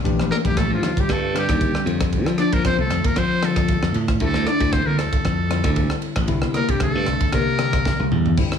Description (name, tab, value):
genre	electric jazz fusion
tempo	115 BPM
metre	4/4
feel	swing 53% on 16ths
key	C mixolydian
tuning	A4 = 441 Hz
part	bell-like tine electric piano	accompaniment	0.0-8.6 s	D3 to G4	-26 LUFS	left 7 dB	wide subtle chorus
part	glassy slap bass	bass	0.0-8.3 s	A1 to F3	-23 LUFS	equal	none
part	crisp fusion drum kit	drums	0.1-8.6 s	crash cymbal, kick drum, ride cymbal, rim click, snare drum, toms	-22 LUFS	right 1 dB	none
part	trumpet with metal mute	melody	0.3-8.1 s	F4 to D5	-25 LUFS	equal	slapback echo
part	hollow-body jazz guitar	second line	0.3-8.1 s	F3 to D4	-27 LUFS	equal	slapback echo
room	light reverb, small room ambience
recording	studio reverb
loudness	-18 LUFS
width	side -7 dB against mid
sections	0.0-8.4 A section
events	drum fill 7.9-8.4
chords	0.0 Bbmaj7; 0.8 Ebmaj9; 1.9 F69; 4.2 Dm7; 6.3 C13